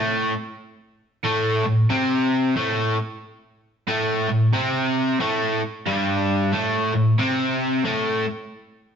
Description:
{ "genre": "rock", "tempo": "91 BPM", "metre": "4/4", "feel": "swing 63% on 8ths", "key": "unclear", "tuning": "A4 = 440 Hz", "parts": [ { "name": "crunchy overdriven guitar", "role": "solo", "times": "0.0-8.2 s", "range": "G2 to C4", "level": "-20 LUFS", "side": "equal", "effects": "none" } ], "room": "wet stone room reverb, RT60 1.2 s", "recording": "rough rehearsal-room recording, tube saturation, nothing above 7.7 kHz", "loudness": "-19 LUFS", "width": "side -7 dB against mid", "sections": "0.0-9.0 A section", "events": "none", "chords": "0.0 Gsus24" }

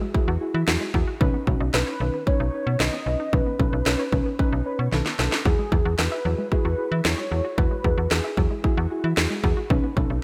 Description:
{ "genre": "synth-pop", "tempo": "113 BPM", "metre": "4/4", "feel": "straight", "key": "E major", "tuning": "A4 = 440 Hz", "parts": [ { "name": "warm velvety synth lead", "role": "melody", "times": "0.0-8.6 s", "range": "G#4 to D#5", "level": "-32 LUFS", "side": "equal", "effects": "chorus, digital delay" }, { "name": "muted felt-like synth keys", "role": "accompaniment", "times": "0.0-10.1 s", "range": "C#4 to C#5", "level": "-32 LUFS", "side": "equal", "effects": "chorus" }, { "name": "unison pluck", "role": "arpeggios", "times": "0.0-10.2 s", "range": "D#3 to E5", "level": "-36 LUFS", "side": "equal", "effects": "digital delay" }, { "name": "house drum kit", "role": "drums", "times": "0.1-10.1 s", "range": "kick drum, snare drum", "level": "-26 LUFS", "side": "equal", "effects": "gated reverb" }, { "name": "slap-like FM bass", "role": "bass", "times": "0.3-10.2 s", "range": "B1 to E3", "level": "-27 LUFS", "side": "equal", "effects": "none" } ], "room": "light reverb, digital ambience", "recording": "bright 1980s-style digital production", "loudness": "-23 LUFS", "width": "mono", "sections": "0.0-10.2 A section", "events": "drum fill 4.9-5.5", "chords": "0.0 Eadd9; 1.2 Badd9; 5.5 Eadd9; 9.7 Badd9" }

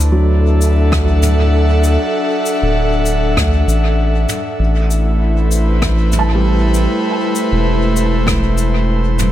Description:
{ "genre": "ambient dub", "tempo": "98 BPM", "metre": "4/4", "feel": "swing 56% on 16ths", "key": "A dorian", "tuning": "A4 = 439 Hz", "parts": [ { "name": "airy breathy pad", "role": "sustained chords", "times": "0.0-9.3 s", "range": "A3 to F#5", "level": "-17 LUFS", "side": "left 1 dB", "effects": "chorus" }, { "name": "felt-muted upright piano", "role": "arpeggios", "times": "0.0-9.3 s", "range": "F#3 to A5", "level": "-24 LUFS", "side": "right 3 dB", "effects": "tape echo" }, { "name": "soft dub sub bass", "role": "bass", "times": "0.0-9.3 s", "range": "D1 to D2", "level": "-14 LUFS", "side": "equal", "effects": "none" }, { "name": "soft brush drum kit", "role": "drums", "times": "0.0-9.3 s", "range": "cabasa, rim click, toms", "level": "-23 LUFS", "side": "left 1 dB", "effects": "dub echo" }, { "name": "electronic kick drum", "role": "drums", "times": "0.9-8.4 s", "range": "none", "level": "-21 LUFS", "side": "equal", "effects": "overdrive" } ], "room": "light reverb, small room ambience", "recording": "none", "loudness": "-12 LUFS", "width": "side -12 dB against mid", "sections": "0.0-9.3 A section", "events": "none", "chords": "0.0 D7; 4.6 Am7" }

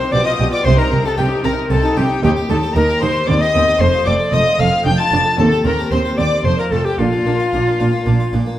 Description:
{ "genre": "classical, baroque-style concerto movement with solo episodes", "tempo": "114 BPM", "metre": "3/4", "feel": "straight", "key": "Bb major", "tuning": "A4 = 441 Hz", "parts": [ { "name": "bright alto recorder", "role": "melody", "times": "0.0-8.3 s", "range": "F4 to A5", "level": "-18 LUFS", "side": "left 2 dB", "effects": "none" }, { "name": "rich chamber violin section", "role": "second line", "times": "0.0-8.3 s", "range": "F4 to A5", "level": "-24 LUFS", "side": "left 1 dB", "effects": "none" }, { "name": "dark chamber viola section", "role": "accompaniment", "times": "0.0-8.4 s", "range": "A3 to G4", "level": "-25 LUFS", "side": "equal", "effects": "none" }, { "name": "harpsichord", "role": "accompaniment", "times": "0.0-8.6 s", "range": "Eb2 to Eb5", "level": "-25 LUFS", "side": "equal", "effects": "none" }, { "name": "warm chamber violin section", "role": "melody", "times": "0.1-8.3 s", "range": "F5 to A6", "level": "-24 LUFS", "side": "left 4 dB", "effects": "none" }, { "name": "dark chamber cello section", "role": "bass", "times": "0.1-8.4 s", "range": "Eb2 to C3", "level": "-21 LUFS", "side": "right 2 dB", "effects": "none" }, { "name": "rich chamber double bass section", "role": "bass", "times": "0.1-8.4 s", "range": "F1 to Eb2", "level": "-20 LUFS", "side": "right 2 dB", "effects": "none" } ], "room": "wet recital hall reverb, RT60 1.8 s", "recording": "dark, warm production", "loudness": "-13 LUFS", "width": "side -13 dB against mid", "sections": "0.0-8.6 A section", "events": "none", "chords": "0.1 G7/B; 0.6 Cm; 2.2 Eb; 3.3 Cm/Eb; 3.8 F; 4.9 Dm/F; 5.4 Cm/Eb; 6.4 F; 7.0 Bb" }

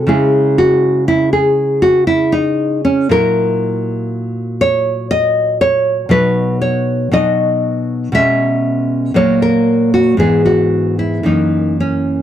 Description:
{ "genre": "classical, baroque-style dance for nylon-string guitar", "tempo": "59 BPM", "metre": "3/4", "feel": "rubato", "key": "unclear", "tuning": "A4 = 438 Hz", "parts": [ { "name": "nylon-string guitar", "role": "solo", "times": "0.0-12.2 s", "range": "F#2 to E5", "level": "-12 LUFS", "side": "equal", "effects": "none" } ], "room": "light reverb", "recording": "dry, close 1970s-style studio recording", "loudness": "-12 LUFS", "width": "side -10 dB against mid", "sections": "0.0-12.2 A section", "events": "none", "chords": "0.1 C#m; 3.1 F#7/A#; 6.1 B; 8.2 C#m7/B; 9.2 F#/A#; 10.2 E/G#; 11.3 F#7" }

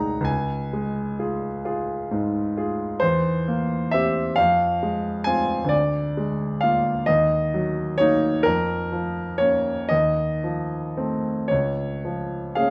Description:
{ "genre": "classical, romantic nocturne for solo piano", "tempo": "36-46 BPM (dotted quarters)", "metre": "6/8", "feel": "rubato", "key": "Bb minor", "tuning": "A4 = 440 Hz", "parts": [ { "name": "clear grand piano", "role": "solo", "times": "0.0-12.7 s", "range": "C2 to Bb5", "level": "-23 LUFS", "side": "equal", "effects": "none" } ], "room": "moderate large studio reverb, RT60 1.2 s", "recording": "none", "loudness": "-23 LUFS", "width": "mono", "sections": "0.0-12.7 A section", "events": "none", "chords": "0.3 Db; 3.0 C7/E; 4.4 Fm; 5.7 Bb7/D; 7.1 Ebm; 8.5 Bbm/F; 9.9 F7/Eb; 11.5 Bbm/Db (rootless)" }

